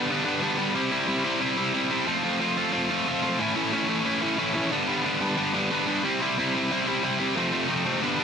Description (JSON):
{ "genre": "punk", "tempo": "182 BPM", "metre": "4/4", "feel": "straight", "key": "unclear", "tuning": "A4 = 440 Hz", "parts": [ { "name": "distorted electric guitar", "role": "solo", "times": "0.0-8.2 s", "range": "F2 to F4", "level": "-23 LUFS", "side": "equal", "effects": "overdrive" } ], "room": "light reverb", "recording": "dense, heavily limited modern master", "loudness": "-23 LUFS", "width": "side -7 dB against mid", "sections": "0.0-8.2 A section", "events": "none", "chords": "0.0 G; 0.8 C; 2.1 F; 3.4 A; 4.7 G; 6.0 C; 7.4 F", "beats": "0.10 0.43 | 0.76 1.09 1.42 1.75 | 2.08 2.41 2.74 3.07 | 3.40 3.73 4.06 4.39 | 4.72 5.05 5.38 5.71 | 6.04 6.37 6.70 7.03 | 7.36 7.69 8.03" }